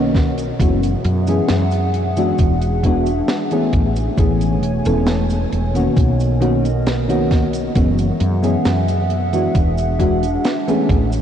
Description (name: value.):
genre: vaporwave.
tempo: 67 BPM.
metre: 4/4.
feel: straight.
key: unclear.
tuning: A4 = 438 Hz.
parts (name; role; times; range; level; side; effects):
mellow FM electric piano; accompaniment; 0.0-11.1 s; D#3 to A4; -19 LUFS; left 1 dB; lush chorus, analog delay.
warbly tape-like pad; sustained chords; 0.0-11.2 s; B2 to G#5; -24 LUFS; right 1 dB; chorus, built-in reverb.
woody fretless electric bass; bass; 0.0-11.2 s; E1 to F#2; -19 LUFS; equal; none.
electronic kick drum; drums; 0.1-11.1 s; none; -17 LUFS; equal; vintage 12-bit sampler grit.
tight funk drum kit; drums; 0.2-11.2 s; cabasa, hi-hat, snare drum; -27 LUFS; equal; vintage 12-bit sampler grit.
room: moderate huge ambient reverb, RT60 7.3 s.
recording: dreamy mix soaked in reverb, cassette tape.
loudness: -15 LUFS.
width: side -9 dB against mid.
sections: 0.0-11.2 A section.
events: none.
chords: 0.0 Bmaj9; 0.6 F#9sus4; 2.4 E9; 3.7 Amaj9; 6.0 Bmaj9; 7.8 F#9sus4; 9.6 E9.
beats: 0.60 1.49 | 2.39 3.28 4.18 5.07 | 5.97 6.87 7.76 8.66 | 9.55 10.45.